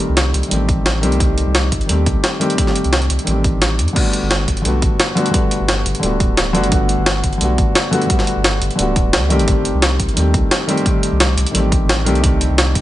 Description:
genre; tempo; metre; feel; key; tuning
liquid drum and bass; 174 BPM; 4/4; straight; unclear; A4 = 440 Hz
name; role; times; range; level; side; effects
felt-muted upright piano; accompaniment; 0.0-12.8 s; D3 to G4; -19 LUFS; left 1 dB; tape echo
jungle sampler-style drum kit; drums; 0.0-12.8 s; crash cymbal, hi-hat, snare drum; -18 LUFS; equal; overdrive
warm sub bass; bass; 0.1-12.8 s; D1 to F#2; -18 LUFS; equal; none
electronic kick drum; drums; 0.7-12.8 s; none; -18 LUFS; equal; none
room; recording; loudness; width
light reverb; nothing above 10.4 kHz; -13 LUFS; side -14 dB against mid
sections
0.0-12.8 A section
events
none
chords
0.0 Cm6; 4.0 Gmaj9; 9.3 Cm6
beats
0.17 0.51 0.86 | 1.20 1.55 1.89 2.24 | 2.58 2.93 3.27 3.62 | 3.96 4.31 4.65 5.00 | 5.34 5.69 6.03 6.38 | 6.72 7.07 7.41 7.75 | 8.10 8.44 8.79 9.13 | 9.48 9.82 10.17 10.51 | 10.86 11.20 11.55 11.89 | 12.24 12.58

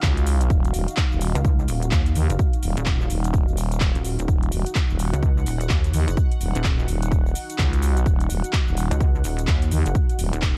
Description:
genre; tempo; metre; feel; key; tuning
bass house; 127 BPM; 4/4; swing 61% on 16ths; Eb minor; A4 = 439 Hz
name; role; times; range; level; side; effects
sweeping resonant pad; sustained chords; 0.0-10.6 s; Eb4 to Gb5; -36 LUFS; equal; chorus, sidechain pumping
growling FM bass; bass; 0.0-10.3 s; Eb1 to Eb2; -24 LUFS; equal; overdrive, sidechain pumping
electronic kick drum; drums; 0.0-10.5 s; none; -23 LUFS; equal; none
house drum kit; drums; 0.0-10.5 s; handclaps, hi-hat, shaker; -33 LUFS; equal; none
pulsing pluck wobble bass; bass; 1.4-10.6 s; Eb1 to Eb2; -26 LUFS; equal; chorus, sidechain pumping
room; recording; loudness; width
digital ambience; dark, warm production; -22 LUFS; mono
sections
0.0-10.6 A section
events
none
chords
0.0 Ebmadd9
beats
0.03 | 0.50 0.97 1.45 1.92 | 2.39 2.86 3.34 3.81 | 4.28 4.75 5.23 5.70 | 6.17 6.64 7.12 7.59 | 8.06 8.53 9.01 9.48 | 9.95 10.42

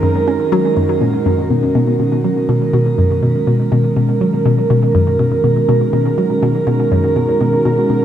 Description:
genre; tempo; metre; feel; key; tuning
ambient, sequencer-driven space music; 122 BPM; 4/4; straight; B major; A4 = 439 Hz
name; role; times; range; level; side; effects
sweeping resonant pad; sustained chords; 0.0-8.0 s; Eb3 to Bb4; -15 LUFS; right 2 dB; wide subtle chorus, shimmer reverb
hollow square pluck; riff; 0.0-8.0 s; Gb2 to Db4; -15 LUFS; left 1 dB; chorus, phaser, tape echo
room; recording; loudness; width
wet lush hall reverb, RT60 2.7 s; none; -12 LUFS; side -10 dB against mid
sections
0.0-1.5 A section; 1.5-8.0 B section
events
none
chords
0.0 Gb; 1.5 Bmaj7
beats
0.03 0.52 1.01 | 1.51 2.00 2.49 2.98 | 3.47 3.96 4.46 4.95 | 5.44 5.93 6.42 6.92 | 7.41 7.90

